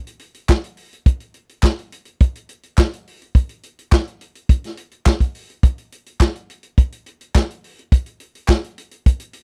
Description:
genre	disco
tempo	105 BPM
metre	4/4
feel	straight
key	none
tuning	none
part	vintage drum kit	drums	0.1-9.4 s	handclaps, hi-hat, kick drum, snare drum	-15 LUFS	equal	none
part	group handclap	percussion	0.5-8.6 s	none	-31 LUFS	equal	none
room	little or no reverb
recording	dry, close 1970s-style studio recording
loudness	-20 LUFS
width	mono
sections	0.0-9.4 A section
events	none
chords	none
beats	0.49 | 1.06 1.64 2.21 2.78 | 3.35 3.92 4.49 5.06 | 5.63 6.20 6.78 7.35 | 7.92 8.49 9.06

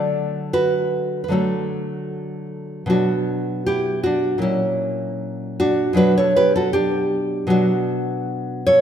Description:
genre	romantic piece for solo classical guitar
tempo	77 BPM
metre	4/4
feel	rubato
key	unclear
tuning	A4 = 441 Hz
part	nylon-string guitar	solo	0.0-8.8 s	A#2 to D5	-18 LUFS	equal	none
room	moderate concert hall reverb, RT60 1.9 s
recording	minimal, uncompressed stereo recording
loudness	-18 LUFS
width	side -9 dB against mid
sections	0.0-8.8 A section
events	none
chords	0.0 D; 2.9 Bm; 4.4 F#7/A#; 6.0 Bm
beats	0.52 1.31 2.10 | 2.89 3.65 4.41 5.19 | 5.97 6.74 7.51 8.28

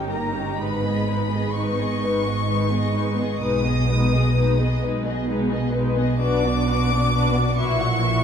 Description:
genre	classical, slow romantic movement for string orchestra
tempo	41-45 BPM (dotted quarters)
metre	6/8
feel	rubato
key	G# minor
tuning	A4 = 440 Hz
part	warm chamber violin section	melody	0.0-8.2 s	A#5 to D#6	-27 LUFS	left 3 dB	none
part	warm studio violin section	second line	0.0-8.2 s	D4 to F#5	-27 LUFS	left 4 dB	none
part	rich chamber viola section	accompaniment	0.0-8.2 s	E3 to G4	-28 LUFS	equal	none
part	dark chamber double bass section	bass	0.0-8.2 s	G1 to B1	-24 LUFS	right 1 dB	none
part	warm chamber cello section	bass	0.0-8.2 s	G2 to B2	-26 LUFS	right 2 dB	none
room	wet scoring stage reverb, RT60 1.6 s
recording	heard from further back in the room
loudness	-19 LUFS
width	side -8 dB against mid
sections	0.0-8.2 A section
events	none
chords	0.0 D#7/G; 0.6 G#m; 3.4 G#m/B; 6.2 Bm; 7.6 F#7/A#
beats	| 0.59 2.00 | 3.38 4.82 | 6.21 7.58

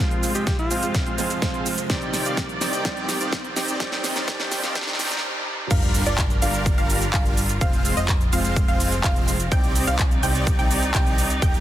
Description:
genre	EDM, festival progressive house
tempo	126 BPM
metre	4/4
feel	straight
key	unclear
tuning	A4 = 440 Hz
part	clear concert grand piano	accompaniment	0.0-5.7 s	Eb3 to D5	-33 LUFS	right 4 dB	sidechain pumping, tape echo
part	clear studio string section	sustained chords	0.0-11.6 s	C2 to D5	-31 LUFS	right 1 dB	sidechain pumping, low-pass filter
part	dense compressed supersaw	riff	0.0-11.6 s	G3 to G5	-27 LUFS	equal	sidechain pumping, low-pass filter, tape echo
part	riser, swell and sub drop	sound effects	2.2-7.6 s	none	-34 LUFS	equal	none
part	big-room dance drum kit	drums	0.1-11.6 s	cabasa, crash cymbal, handclaps, hi-hat, snare drum	-27 LUFS	right 1 dB	none
part	breathy alto saxophone	melody	0.3-0.9 s	F4 to G4	-32 LUFS	equal	none
part	electronic kick drum	drums	0.5-11.5 s	none	-22 LUFS	equal	none
part	wide unison pluck	arpeggios	5.7-11.6 s	D5 to G5	-30 LUFS	right 1 dB	sidechain pumping, tape echo
part	fat analog bass	bass	5.7-11.6 s	Eb1 to C2	-26 LUFS	equal	sidechain pumping
room	light reverb, digital ambience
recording	dense, heavily limited modern master, high-pass filter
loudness	-20 LUFS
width	side -12 dB against mid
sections	0.0-5.7 A section; 5.7-11.6 B section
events	build-up 0.0-5.7; drum fill 0.0-5.2; filter sweep on supersaw synth 0.0-5.7; filter sweep 0.0-5.7; swell 4.8-5.7; break 5.2-5.7; drop 5.7-11.6; impact 5.7-7.6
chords	0.0 Fm; 1.9 Cmadd9; 3.8 Eb; 5.7 Gm7; 7.6 Fm; 9.5 Cmadd9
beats	0.47 0.95 1.42 | 1.90 2.38 2.85 3.33 | 3.80 4.28 4.75 5.23 | 5.71 6.18 6.66 7.14 | 7.61 8.09 8.56 9.04 | 9.52 9.99 10.47 10.95 | 11.42

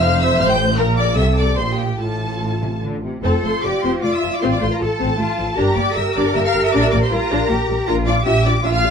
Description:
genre	quick classical-period movement for string orchestra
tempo	155 BPM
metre	3/4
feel	rubato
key	F major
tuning	A4 = 436 Hz
part	clear symphonic violin section	melody	0.0-8.9 s	G5 to G6	-24 LUFS	left 1 dB	none
part	clear symphonic violin section	second line	0.0-8.9 s	G4 to G5	-23 LUFS	left 2 dB	none
part	rich symphonic viola section	accompaniment	0.0-8.9 s	F3 to C5	-22 LUFS	left 1 dB	none
part	rich symphonic cello section	bass	0.0-8.9 s	F2 to Bb4	-23 LUFS	equal	none
part	warm symphonic double bass section	bass	0.0-8.9 s	F1 to C2	-21 LUFS	right 1 dB	none
room	moderate studio reverb, RT60 0.8 s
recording	dark, warm production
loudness	-16 LUFS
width	side -6 dB against mid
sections	0.0-3.2 A section; 3.2-8.9 B section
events	none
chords	0.0 F; 0.8 Bb; 1.2 C69; 1.6 C5/Bb; 2.0 F/A; 3.2 F; 4.4 F/A; 5.6 Gm; 6.7 Gm/Bb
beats	0.02 0.41 | 0.79 1.17 1.57 | 1.99 2.41 2.83 | 3.24 3.65 4.04 | 4.42 4.81 5.19 | 5.58 5.96 6.35 | 6.74 7.11 7.50 | 7.88 8.26 8.65

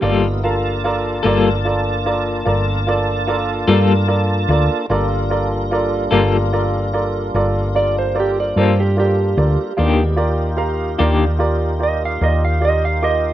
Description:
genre	blues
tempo	49 BPM (dotted quarters)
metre	12/8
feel	straight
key	G minor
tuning	A4 = 440 Hz
part	clean lap steel guitar	second line	0.0-13.3 s	G4 to F5	-21 LUFS	right 4 dB	digital delay
part	clean electric guitar	accompaniment	0.0-11.2 s	Eb3 to A4	-16 LUFS	left 5 dB	tremolo
part	warm grand piano	accompaniment	0.0-13.3 s	F4 to D6	-21 LUFS	right 2 dB	none
part	tonewheel organ	sustained chords	0.0-13.3 s	G3 to A5	-23 LUFS	equal	chorus vibrato, slow rotary speaker
part	hollow-body short-scale fingered electric bass	bass	0.0-13.3 s	G1 to G2	-19 LUFS	equal	none
room	little or no reverb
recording	rough home demo mix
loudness	-15 LUFS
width	side -12 dB against mid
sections	0.0-13.3 A section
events	electric slide guitar solo 0.0-13.3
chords	0.0 Gm9; 9.8 Ebmaj7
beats	| 0.03 1.24 2.46 3.68 | 4.90 6.12 7.34 8.56 | 9.78 11.00 12.22

